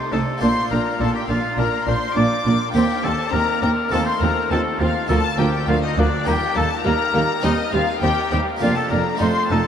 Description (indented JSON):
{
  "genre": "classical, baroque-style concerto movement with solo episodes",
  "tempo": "102 BPM",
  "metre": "4/4",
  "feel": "straight",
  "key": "Bb major",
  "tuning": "A4 = 440 Hz",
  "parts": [
    { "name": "warm oboe", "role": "melody", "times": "0.0-9.7 s", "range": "D4 to D5", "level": "-24 LUFS", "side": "left 2 dB", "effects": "none" },
    { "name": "harpsichord", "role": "accompaniment", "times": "0.0-9.7 s", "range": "D2 to G4", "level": "-28 LUFS", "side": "equal", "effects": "none" },
    { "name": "rich chamber violin section", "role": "melody", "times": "0.1-9.7 s", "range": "D5 to D6", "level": "-26 LUFS", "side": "left 6 dB", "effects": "none" },
    { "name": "rich chamber violin section", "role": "second line", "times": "0.1-9.6 s", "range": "Bb3 to Eb4", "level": "-27 LUFS", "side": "left 3 dB", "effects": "none" },
    { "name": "warm studio viola section", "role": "accompaniment", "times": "0.1-9.6 s", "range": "F3 to Bb3", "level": "-26 LUFS", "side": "right 1 dB", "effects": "none" },
    { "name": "rich studio cello section", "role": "bass", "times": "0.1-9.6 s", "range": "D2 to C3", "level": "-25 LUFS", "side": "right 4 dB", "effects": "none" },
    { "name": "rich symphonic double bass section", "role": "bass", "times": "0.1-9.6 s", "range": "F1 to Eb2", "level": "-26 LUFS", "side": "right 3 dB", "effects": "none" }
  ],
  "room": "wet huge ambient reverb, RT60 7.7 s",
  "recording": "in a vast, echoing space",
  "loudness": "-17 LUFS",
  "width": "side -8 dB against mid",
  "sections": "0.0-9.7 A section",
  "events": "none",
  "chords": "0.4 Bb; 2.8 Cm7/Eb; 3.9 F7/Eb; 5.1 Bb/D; 6.3 Eb; 7.4 Cm/Eb; 8.6 Bb/F",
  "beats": "| 0.42 1.01 1.59 2.17 | 2.75 3.34 3.92 4.51 | 5.10 5.68 6.27 6.86 | 7.44 8.03 8.62 9.21"
}